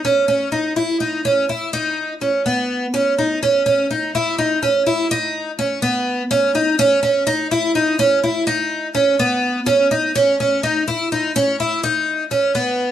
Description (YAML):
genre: progressive instrumental, progressive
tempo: 250 BPM (eighths)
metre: 7/8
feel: straight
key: unclear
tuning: A4 = 441 Hz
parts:
  - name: picked twelve-string acoustic guitar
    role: solo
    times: 0.0-12.9 s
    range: B3 to E4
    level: -16 LUFS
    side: right 1 dB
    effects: none
room: wet studio reverb, RT60 0.5 s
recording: band playing live in one room, lossy compression artefacts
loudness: -16 LUFS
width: side -10 dB against mid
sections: 0.0-5.1 A section; 5.1-12.9 B section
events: none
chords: none